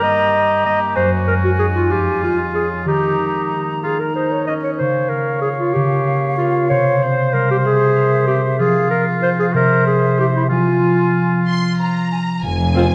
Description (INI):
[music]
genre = cinematic, playful, whimsical film cue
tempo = 63 BPM (dotted quarters)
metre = 6/8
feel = straight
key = F minor from 4.8 s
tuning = A4 = 440 Hz
[part]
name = bright clarinet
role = second line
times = 0.0-11.5 s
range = E4 to Eb5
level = -20 LUFS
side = equal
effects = none
[part]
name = bright silver concert flute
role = second line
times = 0.0-12.2 s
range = E5 to C6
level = -27 LUFS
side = equal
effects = none
[part]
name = warm oboe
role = second line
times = 0.0-12.1 s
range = Db4 to Db5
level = -26 LUFS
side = equal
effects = none
[part]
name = concert harp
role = arpeggios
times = 0.0-12.9 s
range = F2 to Eb5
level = -21 LUFS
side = equal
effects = none
[part]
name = rich studio violin section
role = melody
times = 11.5-12.9 s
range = Ab5 to C6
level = -27 LUFS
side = equal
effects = none
[part]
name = rich studio cello section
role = bass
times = 12.4-12.9 s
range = F2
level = -22 LUFS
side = equal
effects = none
[part]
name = rich studio double bass section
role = bass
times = 12.4-12.9 s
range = F1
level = -22 LUFS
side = equal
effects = none
[part]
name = warm studio viola section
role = accompaniment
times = 12.7-12.8 s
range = C4 to F4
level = -19 LUFS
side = equal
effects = none
[part]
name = rich studio violin section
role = second line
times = 12.8 s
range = Ab4 to C5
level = -27 LUFS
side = equal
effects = none
[sound]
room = moderate scoring stage reverb, RT60 1.7 s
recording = dark, warm production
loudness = -17 LUFS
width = mono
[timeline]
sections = 0.0-12.4 A section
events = none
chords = 0.0 Eb/G; 1.0 Ab5/Gb; 1.9 Db/F; 2.9 Eb; 4.8 Bbm/Db; 6.7 C7; 8.6 Fm; 9.5 C; 10.5 Fm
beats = 0.02 | 0.96 1.91 | 2.87 3.83 | 4.80 5.76 | 6.71 7.65 | 8.59 9.54 | 10.50 11.47 | 12.44